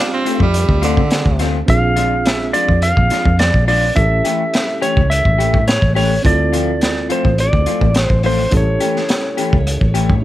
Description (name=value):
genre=straight-eighth soul blues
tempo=105 BPM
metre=4/4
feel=straight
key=D minor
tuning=A4 = 442 Hz
part: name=clean lap steel guitar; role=melody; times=0.0-10.2 s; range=C5 to F5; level=-19 LUFS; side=equal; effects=none
part: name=breathy tenor saxophone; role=second line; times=0.0-1.5 s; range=D3 to D4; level=-20 LUFS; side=right 3 dB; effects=none
part: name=reed electric piano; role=accompaniment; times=0.0-10.2 s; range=C4 to A4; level=-24 LUFS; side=right 3 dB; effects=fast tremolo
part: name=electric guitar through a small old amp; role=stabs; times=0.3-10.1 s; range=E3 to G4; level=-22 LUFS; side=left 5 dB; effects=none
part: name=crunchy breakbeat drum kit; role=drums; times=0.3-10.2 s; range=hi-hat, kick drum, snare drum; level=-18 LUFS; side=equal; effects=none
part: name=vintage muted fingered electric bass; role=bass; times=0.4-10.2 s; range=A1 to D3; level=-17 LUFS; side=equal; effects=none
room=little or no reverb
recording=none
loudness=-12 LUFS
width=side -14 dB against mid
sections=0.0-10.2 A section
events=none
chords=0.0 Dm7; 1.7 Bb7; 4.0 A7; 6.2 Dm7; 8.5 A7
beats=0.54 1.11 | 1.68 2.25 2.83 3.40 | 3.96 4.54 5.11 5.67 | 6.25 6.82 7.38 7.96 | 8.53 9.09 9.66 10.23